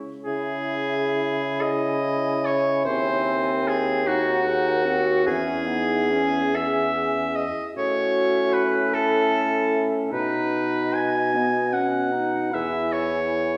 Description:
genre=classical, slow romantic movement for wind quintet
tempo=43-52 BPM (dotted quarters)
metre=6/8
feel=rubato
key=C# minor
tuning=A4 = 440 Hz
part: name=clear oboe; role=second line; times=0.2-13.6 s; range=F#4 to G#5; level=-26 LUFS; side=equal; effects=none
part: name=mellow silver concert flute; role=melody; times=0.3-13.6 s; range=D#5 to G#5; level=-38 LUFS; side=equal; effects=none
part: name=clear clarinet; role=accompaniment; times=0.3-13.6 s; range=B3 to E4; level=-33 LUFS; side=equal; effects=none
part: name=warm French horn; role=accompaniment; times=0.3-13.6 s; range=B3 to G#4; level=-31 LUFS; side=equal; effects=none
part: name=dark bassoon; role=bass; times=0.3-13.6 s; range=D#2 to C#3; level=-29 LUFS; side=equal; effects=none
room=wet recital hall reverb, RT60 1.6 s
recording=heard from further back in the room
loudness=-23 LUFS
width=mono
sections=0.3-13.6 A section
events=none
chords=0.3 C#m; 2.9 G#7/D#; 5.3 C#m/E; 7.8 A; 10.1 B; 12.5 E

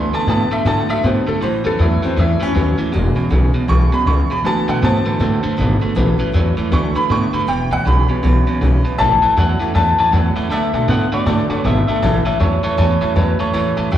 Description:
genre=rockabilly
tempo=158 BPM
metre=4/4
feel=swing 62% on 8ths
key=A major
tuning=A4 = 444 Hz
part: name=bright upright piano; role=accompaniment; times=0.0-14.0 s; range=C#3 to C#6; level=-21 LUFS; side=left 1 dB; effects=slapback echo
part: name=picked steel-string acoustic guitar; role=accompaniment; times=0.0-14.0 s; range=A2 to B4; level=-26 LUFS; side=left 3 dB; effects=none
part: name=electric guitar at the edge of break-up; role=riff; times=0.0-14.0 s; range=E2 to B3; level=-21 LUFS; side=right 4 dB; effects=harmonic tremolo
part: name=upright bass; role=bass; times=0.0-14.0 s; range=E1 to B2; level=-17 LUFS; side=equal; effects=none
part: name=electric guitar through a small old amp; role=melody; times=9.0-14.0 s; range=B4 to A5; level=-18 LUFS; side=left 3 dB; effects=spring reverb, slapback echo, tape echo
room=small room ambience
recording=live gig heard through the venue's PA, club reverb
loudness=-14 LUFS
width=side -11 dB against mid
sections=0.0-9.0 A section; 9.0-14.0 B section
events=upright piano solo 0.0-9.0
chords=0.0 D6; 1.4 A6; 2.9 E6; 4.4 D6; 6.0 A6; 6.7 D6; 7.5 E6; 9.0 A6; 10.5 D6; 12.0 A6

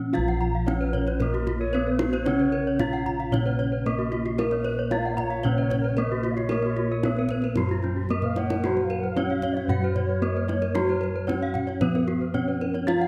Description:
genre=Balinese gamelan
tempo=113 BPM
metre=4/4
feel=straight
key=Bb pelog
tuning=A4 = 441 Hz
part: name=gamelan-type bronze metallophone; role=melody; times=0.0-13.1 s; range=Gb3 to Gb4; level=-31 LUFS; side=equal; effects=none
part: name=gamelan-type bronze metallophone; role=accompaniment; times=0.0-13.1 s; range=Db3 to Cb4+35c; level=-38 LUFS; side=equal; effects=none
part: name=gamelan-type bossed gongs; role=bass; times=0.0-13.1 s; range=Bb1 to Bb4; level=-29 LUFS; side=equal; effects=none
part: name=gamelan-type bronze metallophone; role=arpeggios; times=0.1-13.0 s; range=Db4 to Bb5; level=-34 LUFS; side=equal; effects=none
part: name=kendang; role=percussion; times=0.1-13.1 s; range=none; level=-35 LUFS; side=equal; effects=none
part: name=gamelan-type bronze metallophone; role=arpeggios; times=0.3-13.1 s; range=F4 to Gb5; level=-38 LUFS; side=equal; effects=none
part: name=bright reedy bansuri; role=second line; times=0.9-13.1 s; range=Bb4 to Gb5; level=-35 LUFS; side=equal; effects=none
room=moderate scoring stage reverb, RT60 1.4 s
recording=none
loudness=-25 LUFS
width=mono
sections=0.1-13.1 A section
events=drum fill 8.1-8.6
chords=none

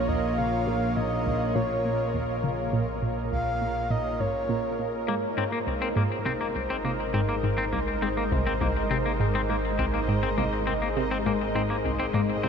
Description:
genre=ambient, sequencer-driven space music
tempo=102 BPM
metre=4/4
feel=straight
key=unclear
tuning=A4 = 440 Hz
part: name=breathy flute-like synth lead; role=melody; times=0.0-5.1 s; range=Db5 to F5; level=-32 LUFS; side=equal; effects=chorus, shimmer reverb, ping-pong delay
part: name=lush unison pad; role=sustained chords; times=0.0-12.5 s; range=Ab3 to Db5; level=-29 LUFS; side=right 1 dB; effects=chorus, shimmer reverb
part: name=analog drone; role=bass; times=0.0-12.5 s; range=Ab1 to Bb1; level=-33 LUFS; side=equal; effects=chorus
part: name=bubbling stepped-filter texture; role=texture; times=0.0-12.5 s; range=Ab4 to Eb5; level=-43 LUFS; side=equal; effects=chorus, built-in reverb, shimmer reverb
part: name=analog pluck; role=riff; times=0.1-12.5 s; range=C2 to Db3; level=-30 LUFS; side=equal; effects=chorus, ping-pong delay
part: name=twangy electric guitar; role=arpeggios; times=5.1-12.5 s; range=Bb3 to C4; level=-30 LUFS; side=left 4 dB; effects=auto-pan, shimmer reverb, ping-pong delay
room=moderate huge ambient reverb, RT60 8.6 s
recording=cassette tape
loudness=-24 LUFS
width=side -6 dB against mid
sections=0.0-12.5 A section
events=fade-in on synth texture 0.0-12.5; filter sweep on synth arpeggio sound 0.0-12.5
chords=0.0 Bbm; 5.1 Ab

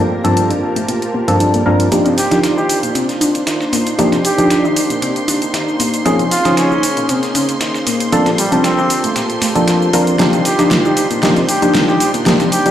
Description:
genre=deep house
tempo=116 BPM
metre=4/4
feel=swing 53% on 16ths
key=C dorian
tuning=A4 = 441 Hz
part: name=warm analog pad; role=sustained chords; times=0.0-12.7 s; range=Bb3 to A5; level=-21 LUFS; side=right 1 dB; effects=chorus, vintage 12-bit sampler grit
part: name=warbly dusty pluck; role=arpeggios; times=0.0-12.7 s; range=A3 to F4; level=-20 LUFS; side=left 1 dB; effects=chorus, tape echo
part: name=percussive organ stab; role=stabs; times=0.0-12.7 s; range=G2 to Bb4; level=-15 LUFS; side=equal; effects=analog chorus, tape echo
part: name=string machine, violins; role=texture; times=0.0-12.7 s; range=Bb4 to C6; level=-27 LUFS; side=equal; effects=ensemble chorus
part: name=deep house drum kit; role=drums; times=0.2-12.7 s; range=cabasa, hi-hat, snare drum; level=-20 LUFS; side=equal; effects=overdrive, small room ambience
part: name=dusty soul sampler-style drum kit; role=drums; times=1.9-12.7 s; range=ride cymbal, snare drum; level=-27 LUFS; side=right 1 dB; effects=high-pass filter on cymbals, small room ambience, high-pass filter on snare
part: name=trumpet with bucket mute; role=melody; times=2.2-12.7 s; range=G3 to G4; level=-19 LUFS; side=right 1 dB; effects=vintage 12-bit sampler grit, tape echo
room=wet digital room reverb, RT60 1.2 s, digital ambience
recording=played on a big sound system in a bare room, large studio reverb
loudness=-12 LUFS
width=side -10 dB against mid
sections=0.0-1.9 A section; 1.9-12.7 B section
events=build-up 1.9-12.7; drum fill 10.2-12.7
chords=0.0 Gm11; 1.9 Cm11; 6.1 Bbm11; 8.1 Gm11; 10.2 Cm11

